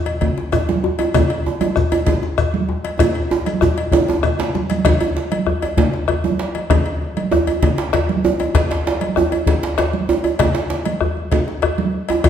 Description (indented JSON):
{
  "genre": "west african traditional, West African drum ensemble",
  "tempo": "130 BPM (dotted quarters)",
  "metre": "12/8",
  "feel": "straight",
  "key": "none",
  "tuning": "none",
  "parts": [
    { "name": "cowbell", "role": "percussion", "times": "0.1-12.3 s", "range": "none", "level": "-26 LUFS", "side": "left 4 dB", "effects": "none" },
    { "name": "bombo", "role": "percussion", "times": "0.2-12.3 s", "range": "none", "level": "-21 LUFS", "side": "left 3 dB", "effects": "none" },
    { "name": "congas", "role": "percussion", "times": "0.2-12.3 s", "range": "none", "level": "-23 LUFS", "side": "right 4 dB", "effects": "none" },
    { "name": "djembe", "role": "percussion", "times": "0.4-12.3 s", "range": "none", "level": "-22 LUFS", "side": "left 3 dB", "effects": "none" },
    { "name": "djembe", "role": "percussion", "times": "0.5-12.3 s", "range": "none", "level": "-20 LUFS", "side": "right 4 dB", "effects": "none" },
    { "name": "shekere", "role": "percussion", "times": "0.5-4.8, 12.2-12.3 s", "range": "none", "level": "-30 LUFS", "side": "left 1 dB", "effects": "none" }
  ],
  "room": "wet recital hall reverb, RT60 1.5 s",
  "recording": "heard from further back in the room",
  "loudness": "-16 LUFS",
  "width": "side -9 dB against mid",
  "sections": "0.0-4.9 A section; 4.9-12.3 B section",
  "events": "drum fill 3.0-4.9",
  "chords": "none",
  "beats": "0.22 0.68 | 1.14 1.61 2.07 2.54 | 3.00 3.46 3.92 4.39 | 4.85 5.31 5.78 6.24 | 6.70 7.16 7.63 8.09 | 8.55 9.01 9.47 9.94 | 10.40 10.86 11.32 11.78 | 12.24"
}